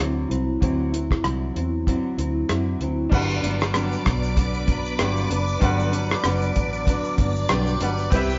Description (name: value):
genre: indie pop, bedroom pop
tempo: 96 BPM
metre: 4/4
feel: swing 55% on 16ths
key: G major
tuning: A4 = 439 Hz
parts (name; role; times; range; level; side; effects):
- nylon-string guitar; accompaniment; 0.0-8.4 s; G2 to E4; -28 LUFS; equal; vibrato effect
- vintage muted fingered electric bass; bass; 0.0-8.4 s; F#1 to F#2; -28 LUFS; equal; none
- cloth-damped thuddy drum kit; drums; 0.3-8.4 s; crash cymbal, hi-hat, kick drum, rim click, shaker; -26 LUFS; equal; none
- bright upright piano; accompaniment; 3.1-8.4 s; G3 to G5; -33 LUFS; equal; none
- string machine, full ensemble; sustained chords; 3.1-8.4 s; G4 to D6; -31 LUFS; equal; phaser, ensemble chorus
- tube shaker; percussion; 3.1-8.4 s; none; -49 LUFS; equal; none
room: moderate stone room reverb, RT60 1.1 s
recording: band playing live in one room, nothing above 7.5 kHz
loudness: -23 LUFS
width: mono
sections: 0.0-3.1 A section; 3.1-8.4 B section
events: upright piano fill 7.2-8.1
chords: 0.0 D9; 3.1 Gmaj7